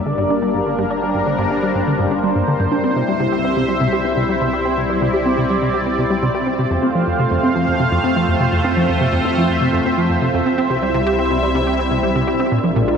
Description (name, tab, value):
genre	ambient, sequencer-driven space music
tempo	124 BPM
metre	4/4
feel	straight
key	unclear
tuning	A4 = 442 Hz
part	sweeping resonant pad	sustained chords	0.0-13.0 s	G3 to F5	-18 LUFS	right 1 dB	chorus
part	warm sub bass	bass	0.0-13.0 s	G1 to F2	-30 LUFS	equal	none
part	plucky analog bass	riff	0.1-13.0 s	F2 to G4	-19 LUFS	left 1 dB	analog chorus, vintage 12-bit sampler grit, ping-pong delay
room	wet huge ambient reverb, RT60 8.3 s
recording	none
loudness	-15 LUFS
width	side -6 dB against mid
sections	0.0-13.0 A section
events	fade-in on sub bass 0.0-13.0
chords	0.0 Gm; 2.8 C; 6.7 F; 10.6 C